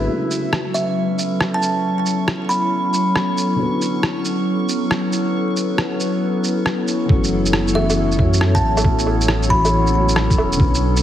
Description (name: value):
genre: future garage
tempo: 137 BPM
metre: 4/4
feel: swing 66% on 16ths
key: F# minor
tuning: A4 = 440 Hz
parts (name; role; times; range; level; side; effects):
- dark upright piano; accompaniment; 0.0-11.0 s; C#3 to F#4; -25 LUFS; left 2 dB; vintage 12-bit sampler grit, sidechain pumping, low-pass filter, digital delay
- warbly tape-like pad; sustained chords; 0.0-11.0 s; F#3 to E5; -21 LUFS; equal; chorus, built-in reverb, phaser, sidechain pumping
- warm sub bass; bass; 0.0-0.1, 7.1-11.0 s; E1 to F#2; -20 LUFS; equal; none
- drifting glass-harmonics texture; texture; 0.0-11.0 s; C#4 to C#6; -29 LUFS; equal; chorus, built-in reverb
- electronic shaker, rim click and woodblock; drums; 0.3-11.0 s; none; -22 LUFS; right 1 dB; studio reverb
- kalimba; melody; 0.7-2.9, 7.8-9.9 s; E5 to B5; -22 LUFS; right 1 dB; digital delay
- electronic kick drum; drums; 7.1-10.7 s; none; -17 LUFS; equal; studio reverb
room: moderate lush hall reverb, RT60 1.8 s, digital ambience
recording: heavily compressed radio sound, multiband compression, vinyl crackle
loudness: -16 LUFS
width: side -11 dB against mid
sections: 0.1-7.1 A section; 7.1-11.0 B section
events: filter sweep on upright piano 0.1-7.1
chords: 0.1 F#m7; 3.6 Bm; 7.1 F#m7